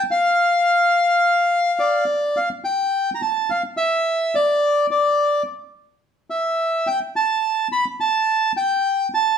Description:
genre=tango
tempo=107 BPM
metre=4/4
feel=rubato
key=unclear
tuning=A4 = 440 Hz
part: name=bandoneon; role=solo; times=0.0-9.4 s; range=D5 to B5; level=-17 LUFS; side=equal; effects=none
room=wet studio reverb, RT60 0.8 s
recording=heard from further back in the room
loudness=-17 LUFS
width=side -8 dB against mid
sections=0.0-2.4 A section; 2.4-9.4 B section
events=none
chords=none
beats=| 0.10 0.66 1.22 1.79 | 2.36 2.92 3.49 4.05 | 4.62 5.18 5.74 6.30 | 6.86 7.42 7.99 8.55 | 9.11

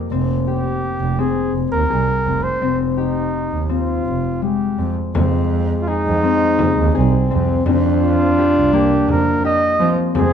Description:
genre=contemporary instrumental, chamber music in an uneven meter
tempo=168 BPM (eighths)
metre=7/8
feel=straight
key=F dorian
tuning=A4 = 437 Hz
part: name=concert harp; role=arpeggios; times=0.0-10.3 s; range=Ab3 to Ab4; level=-21 LUFS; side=left 10 dB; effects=none
part: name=rich double bass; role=bass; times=0.1-10.3 s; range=F1 to F3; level=-20 LUFS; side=right 4 dB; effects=none
part: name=warm flugelhorn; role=melody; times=0.5-10.3 s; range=Eb4 to Eb5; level=-21 LUFS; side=right 2 dB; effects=none
part: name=frame drum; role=percussion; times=5.1-10.3 s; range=none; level=-24 LUFS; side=left 4 dB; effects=none
part: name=mellow French horn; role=second line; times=5.2-10.3 s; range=Ab3 to D4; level=-20 LUFS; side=right 1 dB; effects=none
room=wet recital hall reverb, RT60 1.4 s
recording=dark, warm production, nothing above 10.3 kHz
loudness=-15 LUFS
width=side -8 dB against mid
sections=0.0-5.2 A section; 5.2-10.3 A section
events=none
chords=0.1 Fm9; 5.2 Fm7; 7.7 C9sus4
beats=| 0.12 0.47 0.83 1.19 1.54 1.90 2.26 | 2.62 2.98 3.33 3.69 4.06 4.42 4.79 | 5.15 5.52 5.88 6.24 6.60 6.96 7.31 | 7.67 8.03 8.38 8.74 9.09 9.44 9.80 | 10.15

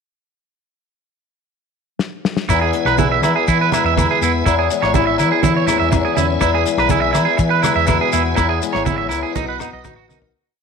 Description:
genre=highlife guitar band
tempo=122 BPM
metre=4/4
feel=straight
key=E major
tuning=A4 = 441 Hz
part: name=damped 70s drum kit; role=drums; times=2.0-10.3 s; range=hi-hat, kick drum, rim click, snare drum, toms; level=-22 LUFS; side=left 3 dB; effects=none
part: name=flamenco guitar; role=accompaniment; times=2.5-10.3 s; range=E2 to G#4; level=-21 LUFS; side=left 11 dB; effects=none
part: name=tonewheel organ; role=sustained chords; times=2.5-10.3 s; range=B4 to G#5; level=-27 LUFS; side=right 1 dB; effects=slow rotary speaker, chorus vibrato
part: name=electric guitar at the edge of break-up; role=arpeggios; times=2.5-10.2 s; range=D#4 to E5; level=-18 LUFS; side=right 10 dB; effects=slapback echo
part: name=hollow-body short-scale fingered electric bass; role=bass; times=2.5-10.3 s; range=G#1 to E3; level=-22 LUFS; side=equal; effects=none
part: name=agogo bells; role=percussion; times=2.5-10.0 s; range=none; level=-27 LUFS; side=left 9 dB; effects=none
part: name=congas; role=percussion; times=2.5-10.2 s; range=none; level=-24 LUFS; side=right 8 dB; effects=none
part: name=shekere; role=percussion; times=2.5-10.2 s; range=none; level=-27 LUFS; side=left 6 dB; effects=none
room=moderate echo chamber reverb, RT60 1.9 s, studio ambience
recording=1960s-style stereo with parts hard left and right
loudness=-14 LUFS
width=side -6 dB against mid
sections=0.5-2.5 pickup bar; 2.5-10.3 groove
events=drum fill 2.0-2.5, 10.1; fade-out 8.4-10.3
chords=0.5 N.C.; 2.5 E; 4.5 C#m; 6.4 E; 8.4 C#m; 9.4 B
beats=| 0.51 1.01 1.50 1.99 | 2.49 2.98 3.47 3.96 | 4.46 4.95 5.44 5.93 | 6.42 6.91 7.40 7.89 | 8.38 8.87 9.36 9.85

